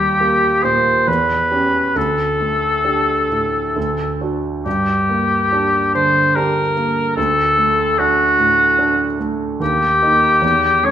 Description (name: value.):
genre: classical, romantic duo for oboe and grand piano.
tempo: 65-74 BPM.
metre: 3/4.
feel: rubato.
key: unclear.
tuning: A4 = 437 Hz.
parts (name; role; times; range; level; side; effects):
warm oboe; melody; 0.0-10.9 s; F#4 to C#5; -15 LUFS; left 1 dB; none.
clear baby grand piano; accompaniment; 0.0-10.9 s; D2 to A4; -20 LUFS; right 3 dB; none.
room: wet recital hall reverb, RT60 1.4 s.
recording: minimal, uncompressed stereo recording.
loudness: -14 LUFS.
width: side -10 dB against mid.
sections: 0.0-10.9 A section.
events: none.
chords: 0.0 Eb; 1.1 Em6; 2.0 Dsus4; 3.8 D; 4.7 Gm; 7.2 D; 9.6 Eb.